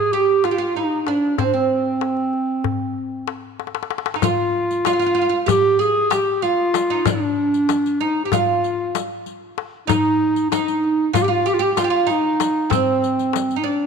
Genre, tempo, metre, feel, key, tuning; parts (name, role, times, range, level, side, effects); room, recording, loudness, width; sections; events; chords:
Turkish makam ensemble; 191 BPM (eighths); 9/8; straight; C makam ussak; A4 = 440 Hz
dark clarinet; melody; 0.0-13.9 s; C4 to Ab4; -20 LUFS; left 1 dB
oud; second line; 0.0-13.9 s; C4 to Ab4; -22 LUFS; right 10 dB
darbuka; percussion; 0.1-13.7 s; -26 LUFS; left 11 dB
riq; percussion; 4.2-13.6 s; -26 LUFS; left 16 dB
moderate echo chamber reverb, RT60 2.2 s; 1960s-style stereo with parts hard left and right; -17 LUFS; side -6 dB against mid
0.0-4.2 A section; 4.2-13.9 B section
drum fill 3.6-4.2